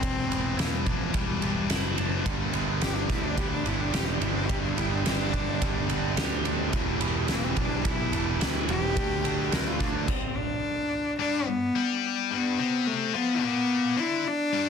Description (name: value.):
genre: quiet-loud alternative rock.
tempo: 107 BPM.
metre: 4/4.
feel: straight.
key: G major.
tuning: A4 = 442 Hz.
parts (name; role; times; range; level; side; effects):
bright cello; melody; 0.0-14.7 s; F3 to Bb4; -29 LUFS; left 2 dB; none.
twangy electric guitar; arpeggios; 0.0-10.1 s; E2 to G4; -37 LUFS; right 9 dB; phaser.
overdriven electric guitar; riff; 0.0-14.7 s; E2 to G4; -31 LUFS; left 11 dB; none.
picked electric bass; bass; 0.0-10.1 s; E1 to D2; -31 LUFS; equal; none.
oversized low-tuned drum kit; drums; 0.0-10.2 s; crash cymbal, kick drum, ride cymbal, snare drum; -29 LUFS; equal; none.
raw garage guitar; riff; 2.3-10.1 s; D3 to G4; -33 LUFS; right 17 dB; overdrive.
room: light reverb.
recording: dense, heavily limited modern master.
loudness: -24 LUFS.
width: side -6 dB against mid.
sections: 0.0-11.2 A section; 11.2-14.7 B section.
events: cello solo 0.0-11.2; stop 10.1-11.2.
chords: 0.0 Em7; 9.0 Dadd9; 11.2 G.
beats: | 0.03 0.59 1.15 1.70 | 2.26 2.82 3.38 3.94 | 4.50 5.06 5.62 6.18 | 6.74 7.29 7.85 8.41 | 8.97 9.53 10.09 10.64 | 11.20 11.76 12.31 12.87 | 13.43 13.98 14.54.